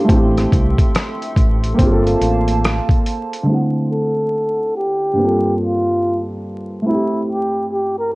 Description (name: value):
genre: lo-fi hip hop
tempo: 71 BPM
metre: 4/4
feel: swing 64% on 16ths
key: G dorian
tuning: A4 = 439 Hz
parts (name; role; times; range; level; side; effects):
- felt-muted upright piano; accompaniment; 0.0-8.2 s; G2 to F#5; -19 LUFS; equal; cassette tape, low-pass filter
- warbly tape-like pad; sustained chords; 0.0-3.5 s; Bb3 to C6; -25 LUFS; right 3 dB; chorus, built-in reverb, low-pass filter
- deep dub fingered electric bass; bass; 0.1-2.8 s; G1 to C2; -18 LUFS; equal; transformer saturation
- dusty soul sampler-style drum kit; drums; 0.1-3.5 s; hi-hat, kick drum, rim click; -16 LUFS; equal; none
- breathy flugelhorn; melody; 3.9-8.1 s; E4 to Bb4; -18 LUFS; equal; low-pass filter
room: moderate studio reverb, RT60 0.6 s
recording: worn, warbling old tape, cassette tape, vinyl crackle, warbly pitch drift, nothing above 10.8 kHz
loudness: -15 LUFS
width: side -22 dB against mid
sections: 0.0-3.5 A section; 3.5-8.2 B section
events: filter sweep 3.5-8.2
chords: 0.1 Am7; 1.8 Gm11; 3.5 D7; 5.2 Gm11; 6.9 Am7